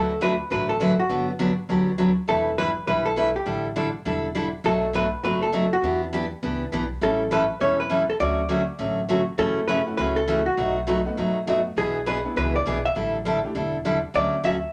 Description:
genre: country, western swing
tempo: 202 BPM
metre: 4/4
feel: swing 62% on 8ths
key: D major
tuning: A4 = 440 Hz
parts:
  - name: hollow-body jazz guitar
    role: melody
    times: 0.0-14.7 s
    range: F#4 to E5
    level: -27 LUFS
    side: equal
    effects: none
  - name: picked steel-string acoustic guitar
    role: accompaniment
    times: 0.0-14.6 s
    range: B2 to B4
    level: -26 LUFS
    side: equal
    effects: none
  - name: upright bass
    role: bass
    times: 0.0-14.6 s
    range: E1 to F#2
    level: -36 LUFS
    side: equal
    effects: none
  - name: tack piano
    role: accompaniment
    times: 9.9-13.5 s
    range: A3 to G#4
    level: -35 LUFS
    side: equal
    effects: none
room: wet club reverb, RT60 0.6 s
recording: none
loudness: -24 LUFS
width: mono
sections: 0.0-14.7 A section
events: none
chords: 0.0 D6; 1.1 Gmaj7; 2.3 Em7; 3.5 A7sus4; 4.6 Bm7; 5.8 Em7; 7.0 A7; 8.2 Dmaj7; 9.4 F#m7; 10.6 B7; 11.8 E7/B; 13.0 A7sus4; 14.1 Dmaj9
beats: 0.21 0.51 0.80 | 1.10 1.39 1.69 1.99 | 2.28 2.58 2.87 3.17 | 3.46 3.76 4.06 4.35 | 4.65 4.94 5.24 5.54 | 5.83 6.13 6.42 6.72 | 7.02 7.31 7.61 7.91 | 8.20 8.50 8.80 9.09 | 9.39 9.69 9.98 10.28 | 10.58 10.88 11.17 11.47 | 11.77 12.07 12.36 12.66 | 12.96 13.26 13.55 13.85 | 14.15 14.45

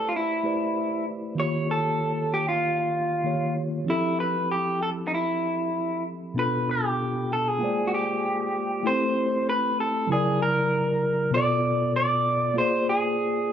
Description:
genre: soul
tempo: 96 BPM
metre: 4/4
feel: straight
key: A minor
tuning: A4 = 440 Hz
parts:
  - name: electric guitar through a small old amp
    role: melody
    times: 0.0-13.5 s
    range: D#4 to D5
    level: -25 LUFS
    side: equal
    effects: none
  - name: mellow tine electric piano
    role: accompaniment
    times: 0.0-13.5 s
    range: B2 to G5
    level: -27 LUFS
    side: left 1 dB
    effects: medium stereo tremolo
room: light reverb, digital ambience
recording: none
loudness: -23 LUFS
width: side -9 dB against mid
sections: 0.0-8.9 A section; 8.9-13.5 B section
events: none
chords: 0.0 Am11; 1.4 D#9; 3.9 Fmaj7; 6.4 Bm7b5; 7.6 Bb13; 8.9 Am7; 10.1 F#7b13; 11.3 Bm7b5; 12.6 Bb9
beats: 0.14 0.77 | 1.39 2.01 2.63 3.26 | 3.88 4.50 5.13 5.75 | 6.37 6.99 7.62 8.24 | 8.86 9.48 10.10 10.72 | 11.34 11.96 12.57 13.19

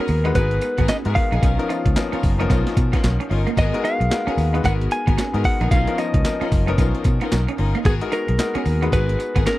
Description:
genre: R&B, new jack swing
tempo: 112 BPM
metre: 4/4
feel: swing 61% on 16ths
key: G# dorian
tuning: A4 = 440 Hz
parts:
  - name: direct-recorded clean electric guitar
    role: melody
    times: 0.0-9.6 s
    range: G#4 to G#5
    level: -24 LUFS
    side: equal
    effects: none
  - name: clear concert grand piano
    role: accompaniment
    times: 0.0-9.6 s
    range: E#3 to B4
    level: -27 LUFS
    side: left 4 dB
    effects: none
  - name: clean electric guitar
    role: riff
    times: 0.0-9.6 s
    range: A#3 to D#4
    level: -29 LUFS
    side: right 6 dB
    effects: analog chorus
  - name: warm chamber string section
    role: stabs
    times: 0.0-9.5 s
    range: B3 to A#4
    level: -29 LUFS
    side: left 4 dB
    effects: none
  - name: vintage muted fingered electric bass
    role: bass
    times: 0.1-9.4 s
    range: F#1 to B2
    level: -21 LUFS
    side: equal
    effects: none
  - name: boom bap sampler-style drum kit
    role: drums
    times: 0.1-9.6 s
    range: handclaps, hi-hat, kick drum, snare drum, tambourine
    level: -21 LUFS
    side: equal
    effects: none
room: little or no reverb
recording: dry, close 1970s-style studio recording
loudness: -17 LUFS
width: side -16 dB against mid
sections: 0.0-9.6 A section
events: none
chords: 0.0 G#m9; 1.4 Bmaj9#11; 3.6 G#m9; 5.7 Bmaj9#11; 7.9 G#m9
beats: 0.36 0.89 | 1.43 1.96 2.50 3.03 | 3.57 4.11 4.64 5.18 | 5.71 6.25 6.78 7.32 | 7.86 8.39 8.93 9.46

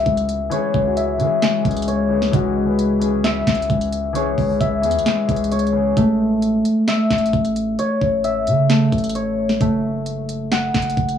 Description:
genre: hip hop, trap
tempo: 132 BPM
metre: 4/4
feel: half-time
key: C# minor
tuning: A4 = 440 Hz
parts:
  - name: clear concert grand piano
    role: accompaniment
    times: 0.0-6.0 s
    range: E3 to B4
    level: -25 LUFS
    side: left 7 dB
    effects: low-pass filter, cassette tape, plate reverb
  - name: concert harp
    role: arpeggios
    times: 0.0-11.2 s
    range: G#3 to F#5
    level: -18 LUFS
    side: left 2 dB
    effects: low-pass filter, cassette tape, analog delay, plate reverb
  - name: long sustained 808-style bass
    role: bass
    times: 0.0-11.2 s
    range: F#1 to E3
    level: -24 LUFS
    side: right 3 dB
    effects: none
  - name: trap drum kit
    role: drums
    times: 0.1-11.2 s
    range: handclaps, hi-hat, kick drum, snare drum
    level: -22 LUFS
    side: right 2 dB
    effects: overdrive, cassette tape
room: wet studio reverb, RT60 0.5 s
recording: home recording on cassette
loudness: -16 LUFS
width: side -8 dB against mid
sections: 0.0-11.2 A section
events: none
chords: 0.0 C#m; 6.0 A; 9.6 F#m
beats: 0.06 | 0.52 0.97 1.43 1.88 | 2.33 2.79 3.24 3.70 | 4.15 4.61 5.06 5.52 | 5.97 6.42 6.88 7.33 | 7.79 8.24 8.70 9.15 | 9.61 10.06 10.52 10.97

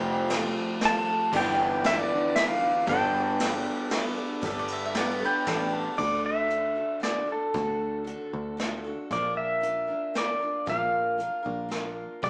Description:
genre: folk rock and heartland rock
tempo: 116 BPM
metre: 3/4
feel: straight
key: G mixolydian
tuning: A4 = 442 Hz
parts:
  - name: pedal steel guitar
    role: melody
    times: 0.0-12.3 s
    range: A4 to A5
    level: -29 LUFS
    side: equal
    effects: none
  - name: picked steel-string acoustic guitar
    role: accompaniment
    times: 0.0-12.3 s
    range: Bb2 to B4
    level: -38 LUFS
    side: equal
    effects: none
  - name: hand-pumped harmonium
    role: sustained chords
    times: 0.0-6.0 s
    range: E3 to D5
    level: -41 LUFS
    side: equal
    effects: none
  - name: electric guitar through a small old amp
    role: riff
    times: 0.0-6.0 s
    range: G2 to A4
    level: -32 LUFS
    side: equal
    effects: none
  - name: picked electric bass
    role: bass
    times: 0.0-12.3 s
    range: F1 to D2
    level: -40 LUFS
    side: equal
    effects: none
  - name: soft brush drum kit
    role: drums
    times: 0.3-12.3 s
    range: crash cymbal, hi-hat, kick drum, ride cymbal, snare drum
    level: -35 LUFS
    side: equal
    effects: none
  - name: bowl-back mandolin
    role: second line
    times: 4.5-5.7 s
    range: B4 to G5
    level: -33 LUFS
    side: equal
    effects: none
room: moderate large studio reverb, RT60 1.0 s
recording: band playing live in one room, small speaker sound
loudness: -28 LUFS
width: mono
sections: 0.0-4.4 A section; 4.4-6.0 B section; 6.0-12.3 C section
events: none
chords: 0.0 Fadd9; 1.3 G6; 2.9 Gadd9; 6.0 D; 9.1 Bb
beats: 0.30 0.82 | 1.33 1.85 2.37 | 2.89 3.40 3.92 | 4.44 4.96 5.48 | 6.00 6.51 7.03 | 7.55 8.07 8.59 | 9.11 9.63 10.15 | 10.67 11.19 11.71 | 12.23

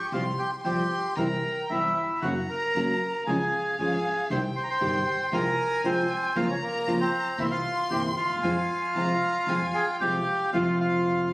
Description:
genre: tango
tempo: 115 BPM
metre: 4/4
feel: rubato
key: F harmonic minor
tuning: A4 = 440 Hz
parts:
  - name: bandoneon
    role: melody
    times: 0.0-11.3 s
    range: Bb3 to C6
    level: -26 LUFS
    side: equal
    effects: none
  - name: warm violin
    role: second line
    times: 0.0-10.5 s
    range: F5 to Db6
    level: -35 LUFS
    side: left 1 dB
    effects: none
  - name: nylon-string guitar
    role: accompaniment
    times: 0.1-11.3 s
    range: C3 to G4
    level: -28 LUFS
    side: equal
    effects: none
  - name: upright bass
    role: bass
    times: 0.1-11.3 s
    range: Gb1 to F2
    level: -37 LUFS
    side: equal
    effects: none
room: moderate large studio reverb, RT60 0.9 s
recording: recorded on a phone in the room, studio reverb, compression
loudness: -24 LUFS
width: side -23 dB against mid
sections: 0.0-10.5 A section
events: none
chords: 0.1 Csus4; 1.2 C; 2.2 Gb; 3.3 Db; 4.3 Cm; 5.3 Fm/C; 6.4 Bbmadd9/Db; 7.4 C7; 8.4 Fm; 10.5 F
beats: | 0.13 0.65 1.17 1.70 | 2.22 2.75 3.27 3.79 | 4.30 4.82 5.33 5.85 | 6.36 6.87 7.39 7.91 | 8.43 8.95 9.47 10.00 | 10.54 11.07

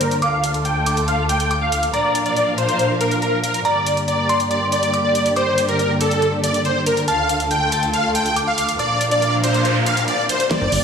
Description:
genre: uplifting trance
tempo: 140 BPM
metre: 4/4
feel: straight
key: G minor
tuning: A4 = 440 Hz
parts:
  - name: supersaw chords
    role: melody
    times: 0.0-10.8 s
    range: A4 to G5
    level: -19 LUFS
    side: equal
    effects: analog chorus, sidechain pumping, low-pass filter, digital delay
  - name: glassy synth bell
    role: second line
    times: 0.0-10.4 s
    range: A5 to D6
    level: -25 LUFS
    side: equal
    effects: chorus, tremolo, digital delay
  - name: dark studio string section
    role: sustained chords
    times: 0.0-10.8 s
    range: D2 to F5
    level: -21 LUFS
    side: left 1 dB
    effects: sidechain pumping, low-pass filter
  - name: big-room dance drum kit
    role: drums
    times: 0.0-10.8 s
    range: hi-hat, snare drum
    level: -27 LUFS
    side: equal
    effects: overdrive
  - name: noise sweep and riser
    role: sound effects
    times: 9.0-10.8 s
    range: none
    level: -26 LUFS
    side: right 2 dB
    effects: none
  - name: analog pluck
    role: arpeggios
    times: 10.5-10.7 s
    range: G3 to Bb4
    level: -28 LUFS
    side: right 2 dB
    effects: chorus, sidechain pumping
  - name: electronic kick drum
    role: drums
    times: 10.5-10.6 s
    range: none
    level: -24 LUFS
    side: right 1 dB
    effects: overdrive, high-pass filter on kick
  - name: fat analog bass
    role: bass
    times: 10.6-10.8 s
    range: G1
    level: -21 LUFS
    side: equal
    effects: sidechain pumping
room: light reverb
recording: played on a big sound system in a bare room, stone room reverb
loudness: -16 LUFS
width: side -6 dB against mid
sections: 0.0-10.5 A section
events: filter sweep on string section 0.0-10.5; noise sweep 9.0-10.5; drum fill 10.5-10.8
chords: 0.2 Dm; 1.9 Bb; 3.6 Gm; 7.1 Dm; 8.8 Bb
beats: | 0.22 0.65 1.08 1.51 | 1.94 2.37 2.79 3.22 | 3.65 4.08 4.51 4.94 | 5.37 5.79 6.22 6.65 | 7.08 7.51 7.94 8.37 | 8.79 9.22 9.65 10.08 | 10.51

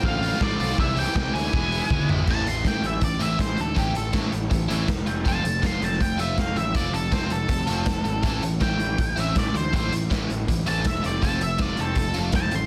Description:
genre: indie rock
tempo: 161 BPM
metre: 4/4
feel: straight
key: A minor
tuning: A4 = 441 Hz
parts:
  - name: octave-fuzz lead guitar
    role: melody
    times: 0.0-12.7 s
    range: G4 to C6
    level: -31 LUFS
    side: equal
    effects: distortion
  - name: tonewheel organ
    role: sustained chords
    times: 0.0-2.3 s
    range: none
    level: barely audible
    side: none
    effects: none
  - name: biting overdriven guitar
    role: riff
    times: 0.0-12.6 s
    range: A2 to F4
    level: -33 LUFS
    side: equal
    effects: none
  - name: overdriven electric guitar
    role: riff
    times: 0.0-12.7 s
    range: A2 to F4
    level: -36 LUFS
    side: equal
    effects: lush chorus
  - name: fuzz picked electric bass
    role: bass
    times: 0.0-12.7 s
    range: E1 to D2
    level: -30 LUFS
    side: equal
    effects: overdrive
  - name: raw garage drum kit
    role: drums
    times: 0.0-12.6 s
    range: crash cymbal, hi-hat, kick drum, snare drum, toms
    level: -28 LUFS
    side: equal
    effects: none
room: small room ambience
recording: dense, heavily limited modern master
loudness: -24 LUFS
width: mono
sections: 0.0-2.3 A section; 2.3-12.7 B section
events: drum fill 1.9-2.3; lead electric guitar solo 2.3-12.7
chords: 0.0 F6/A; 0.8 Cadd9; 1.5 E; 2.3 Am; 5.1 F; 8.2 Am; 11.0 F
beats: 0.04 0.41 | 0.79 1.16 1.53 1.91 | 2.28 2.65 3.02 3.40 | 3.77 4.15 4.52 4.89 | 5.27 5.64 6.01 6.39 | 6.76 7.13 7.50 7.88 | 8.25 8.62 8.99 9.37 | 9.74 10.11 10.48 10.85 | 11.22 11.60 11.97 12.34

